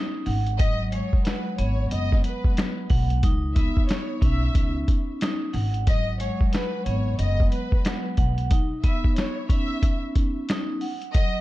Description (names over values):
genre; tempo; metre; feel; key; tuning
hip hop, boom-bap hip-hop; 91 BPM; 4/4; swing 62% on 16ths; C# minor; A4 = 440 Hz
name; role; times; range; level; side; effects
vibraphone with medium hard mallets; accompaniment; 0.0-11.4 s; F#3 to F#5; -30 LUFS; equal; high-pass filter, low-pass filter
upright bass; bass; 0.3-8.5 s; F#1 to C#2; -25 LUFS; equal; none
lo-fi sampler-style drum kit; drums; 0.3-11.3 s; hi-hat, kick drum, snare drum; -23 LUFS; equal; none
warm symphonic violin section; melody; 0.6-11.4 s; B4 to E5; -33 LUFS; left 2 dB; high-pass filter, low-pass filter, ping-pong delay
room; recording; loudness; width
small room ambience; dark, warm production; -21 LUFS; side -17 dB against mid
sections
0.0-11.4 A section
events
none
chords
0.3 G#m7; 3.2 C#sus2; 5.5 G#m7; 8.5 C#sus2; 10.8 G#7(no3) (rootless)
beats
| 0.60 1.26 1.92 2.58 | 3.23 3.89 4.55 5.21 | 5.87 6.53 7.19 7.85 | 8.51 9.17 9.83 10.49 | 11.15